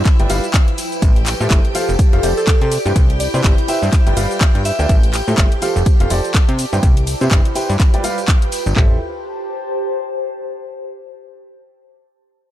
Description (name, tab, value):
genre	piano house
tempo	124 BPM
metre	4/4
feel	swing 58% on 16ths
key	A minor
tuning	A4 = 441 Hz
part	string machine, violins	sustained chords	0.0-8.8 s	E4 to G5	-28 LUFS	equal	ensemble chorus, sidechain pumping
part	plucky analog bass	bass	0.0-9.0 s	F1 to C3	-18 LUFS	equal	sidechain pumping
part	warbly tape-like pad	texture	0.0-10.7 s	F3 to B5	-26 LUFS	equal	chorus, built-in reverb, phaser, sidechain pumping
part	house drum kit	drums	0.1-8.9 s	handclaps, kick drum, toms	-13 LUFS	equal	overdrive
part	house drum kit	drums	0.1-8.7 s	handclaps, hi-hat, ride cymbal, shaker	-23 LUFS	left 1 dB	overdrive
part	tambourine	percussion	0.1-8.7 s	none	-34 LUFS	left 2 dB	none
part	clear upright piano	riff	0.2-9.0 s	C3 to G5	-23 LUFS	right 1 dB	sidechain pumping, ping-pong delay
part	warm alto saxophone	melody	2.4-5.0 s	A4 to E5	-24 LUFS	equal	ping-pong delay
room	digital ambience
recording	dark, warm production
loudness	-13 LUFS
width	side -13 dB against mid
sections	0.0-8.8 A section; 8.8-10.7 B section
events	drop 0.0-8.8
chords	0.1 G7; 1.0 Am7; 1.7 F69; 2.7 Cmaj7; 3.9 G7; 4.9 Am7; 5.6 F69; 6.6 Cmaj7; 7.8 G7; 8.8 Am7